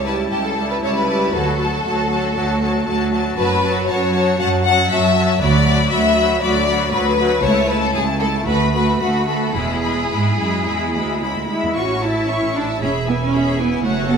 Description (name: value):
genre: quick classical-period movement for string orchestra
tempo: 117 BPM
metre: 4/4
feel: rubato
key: D major, A major from 3.4 s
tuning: A4 = 438 Hz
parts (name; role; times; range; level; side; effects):
- clear chamber violin section; melody; 0.0-14.2 s; F#5 to C#6; -26 LUFS; left 3 dB; none
- clear chamber violin section; second line; 0.0-14.2 s; F#4 to F#5; -20 LUFS; left 3 dB; none
- rich chamber viola section; accompaniment; 0.0-14.2 s; F#3 to A4; -23 LUFS; equal; none
- rich studio cello section; bass; 0.0-14.2 s; C#2 to F#4; -20 LUFS; right 2 dB; none
- clear symphonic double bass section; bass; 1.3-14.2 s; E1 to D2; -23 LUFS; right 3 dB; none
room: moderate scoring stage reverb, RT60 1.9 s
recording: minimal, uncompressed stereo recording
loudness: -15 LUFS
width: side -6 dB against mid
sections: 0.0-11.8 A section; 11.8-14.2 B section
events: none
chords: 0.0 A7/C#; 1.3 D; 3.4 F#m; 5.4 Bm/D; 7.4 A/C#; 8.5 Bm7/D; 9.5 E; 11.8 A; 12.8 E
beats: 0.31 0.83 | 1.34 1.85 2.36 2.87 | 3.38 3.89 4.40 4.91 | 5.42 5.92 6.43 6.93 | 7.44 7.95 8.47 9.00 | 9.55 10.11 10.67 11.22 | 11.77 12.30 12.82 13.34 | 13.85